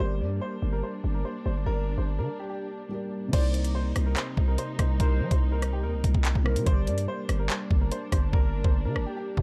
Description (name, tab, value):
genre	hip hop, drill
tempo	144 BPM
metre	4/4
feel	half-time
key	C minor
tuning	A4 = 440 Hz
part	dark baby grand piano	melody	0.0-9.4 s	G4 to D5	-39 LUFS	equal	tape echo
part	felt-muted upright piano	accompaniment	0.0-9.4 s	C3 to D5	-40 LUFS	equal	none
part	muted symphonic string section	sustained chords	0.0-9.4 s	C3 to Eb4	-40 LUFS	equal	none
part	growling 808-style bass	bass	0.0-9.4 s	G1 to G3	-30 LUFS	equal	none
part	warm velvety synth lead	second line	3.3-8.7 s	Bb4 to D5	-41 LUFS	equal	chorus, tape echo
part	drill drum kit	drums	3.3-9.4 s	crash cymbal, handclaps, hi-hat, kick drum, rim click	-28 LUFS	equal	none
room	little or no reverb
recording	dark, warm production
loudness	-27 LUFS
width	mono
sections	0.0-3.3 A section; 3.3-9.4 B section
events	break 2.5-3.3; hi-hats muted 8.3-9.4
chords	0.0 Gm; 3.3 Cm7; 6.7 Gm